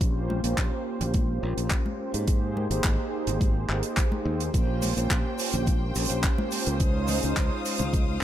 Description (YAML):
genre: nu-disco, nu disco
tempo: 106 BPM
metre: 4/4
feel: straight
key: Bb dorian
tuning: A4 = 440 Hz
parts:
  - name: mellow synth brass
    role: accompaniment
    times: 0.0-8.2 s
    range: Ab3 to C5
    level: -30 LUFS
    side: right 1 dB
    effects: chorus, sidechain pumping, ping-pong delay
  - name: modern bright fingered electric bass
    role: bass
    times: 0.0-8.2 s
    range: Ab1 to Ab2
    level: -29 LUFS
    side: equal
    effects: sidechain pumping
  - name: damped 70s drum kit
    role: drums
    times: 0.0-8.2 s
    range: handclaps, hi-hat, shaker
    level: -31 LUFS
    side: right 2 dB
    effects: studio reverb
  - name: electronic kick drum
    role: drums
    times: 0.0-8.1 s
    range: none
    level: -25 LUFS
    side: equal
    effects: overdrive, studio reverb
  - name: congas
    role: percussion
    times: 0.3-8.1 s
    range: none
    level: -36 LUFS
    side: left 1 dB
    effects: none
  - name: rich studio string section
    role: sustained chords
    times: 4.5-8.2 s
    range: C5 to Eb6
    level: -37 LUFS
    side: left 4 dB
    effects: sidechain pumping
room: little or no reverb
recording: none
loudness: -24 LUFS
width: side -12 dB against mid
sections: 0.0-8.2 A section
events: none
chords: 0.0 Bbm69; 2.3 Abmaj9; 4.5 Bbm69; 6.8 Dbmaj9